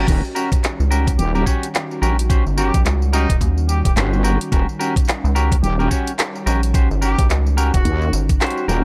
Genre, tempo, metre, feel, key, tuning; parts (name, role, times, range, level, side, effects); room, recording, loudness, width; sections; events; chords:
glitch hop; 108 BPM; 4/4; swing 59% on 16ths; A4 = 440 Hz
warbly tape-like pad; sustained chords; 0.0-8.8 s; Eb3 to F#4; -31 LUFS; equal; chorus, built-in reverb, phaser, sidechain pumping
clean electric guitar; stabs; 0.0-8.8 s; Db4 to Db5; -26 LUFS; equal; sidechain pumping, delay
rubbery square bass; bass; 0.0-8.4 s; Eb1 to Eb2; -20 LUFS; equal
wobble bass; bass; 0.1-8.8 s; Eb1 to Eb2; -20 LUFS; equal; chorus, tube saturation
drum and bass drum kit; drums; 0.1-8.8 s; crash cymbal, handclaps, hi-hat, rim click, tambourine; -27 LUFS; equal
electronic kick drum; drums; 0.1-8.4 s; -20 LUFS; equal
clear trumpet; melody; 1.2-8.1 s; Eb4 to G4; -31 LUFS; equal; delay
digital ambience; -18 LUFS; mono
0.0-8.8 A section
0.0 Eb7#9